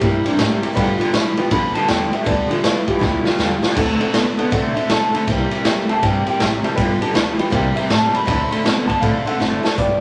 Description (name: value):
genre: rockabilly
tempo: 160 BPM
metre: 4/4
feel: swing 64% on 8ths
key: G mixolydian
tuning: A4 = 440 Hz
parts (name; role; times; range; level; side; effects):
- electric guitar through a small old amp; melody; 0.0-10.0 s; D4 to B5; -24 LUFS; equal; none
- dark upright piano; accompaniment; 0.0-9.9 s; A4 to C6; -30 LUFS; equal; none
- picked steel-string acoustic guitar; accompaniment; 0.0-10.0 s; G2 to A4; -27 LUFS; equal; none
- electric guitar through a small old amp; riff; 0.0-9.8 s; G2 to B3; -25 LUFS; equal; tremolo
- upright bass; bass; 0.0-10.0 s; F#1 to C3; -28 LUFS; equal; none
- raw garage drum kit; drums; 0.0-9.9 s; crash cymbal, hi-hat, kick drum, ride cymbal, snare drum; -22 LUFS; equal; none
room: wet studio reverb, RT60 0.8 s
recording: none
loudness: -18 LUFS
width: mono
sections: 0.0-9.8 A section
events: clean electric guitar solo 0.0-9.8; drum fill 3.0-3.8, 9.4-9.8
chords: 0.0 C7; 0.8 G7; 3.8 D7; 5.3 C7; 6.8 G7; 7.5 C7; 8.3 D7